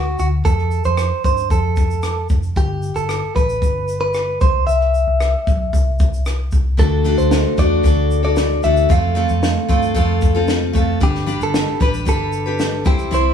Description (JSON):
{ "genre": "acoustic pop", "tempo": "114 BPM", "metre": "4/4", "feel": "straight", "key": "unclear", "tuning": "A4 = 440 Hz", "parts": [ { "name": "direct-recorded clean electric guitar", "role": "melody", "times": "0.0-13.3 s", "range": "F#4 to F5", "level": "-21 LUFS", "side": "right 1 dB", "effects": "none" }, { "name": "vintage muted fingered electric bass", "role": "bass", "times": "0.0-13.3 s", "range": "F1 to G2", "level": "-19 LUFS", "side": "equal", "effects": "none" }, { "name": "compact cocktail drum kit", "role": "drums", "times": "0.2-13.2 s", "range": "kick drum, rim click, shaker, snare drum", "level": "-19 LUFS", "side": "equal", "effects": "none" }, { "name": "picked steel-string acoustic guitar", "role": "accompaniment", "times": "6.8-13.3 s", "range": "G3 to C5", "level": "-19 LUFS", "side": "left 2 dB", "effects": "none" } ], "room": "light reverb", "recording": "band playing live in one room, small room ambience", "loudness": "-15 LUFS", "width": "side -8 dB against mid", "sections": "0.0-13.3 A section", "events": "none", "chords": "0.5 F; 2.6 G; 4.4 C; 6.8 D; 8.9 F; 11.0 G" }